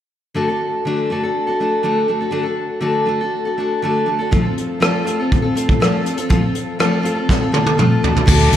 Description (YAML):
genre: folk rock and heartland rock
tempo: 121 BPM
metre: 4/4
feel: straight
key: unclear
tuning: A4 = 440 Hz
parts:
  - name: picked steel-string acoustic guitar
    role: accompaniment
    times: 0.3-8.6 s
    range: D3 to A4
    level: -17 LUFS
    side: left 1 dB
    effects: slapback echo
  - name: soft brush drum kit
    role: drums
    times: 4.3-8.6 s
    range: crash cymbal, hi-hat, kick drum, rim click, snare drum, toms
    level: -16 LUFS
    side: equal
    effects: none
  - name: fingered electric bass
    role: bass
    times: 8.3-8.6 s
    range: D2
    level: -14 LUFS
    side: right 1 dB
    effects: none
room: wet concert hall reverb, RT60 2.3 s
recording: big arena sound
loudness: -15 LUFS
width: side -10 dB against mid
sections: 0.4-8.3 A section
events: drum fill 7.3-8.3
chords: 0.4 D; 4.3 F; 8.0 D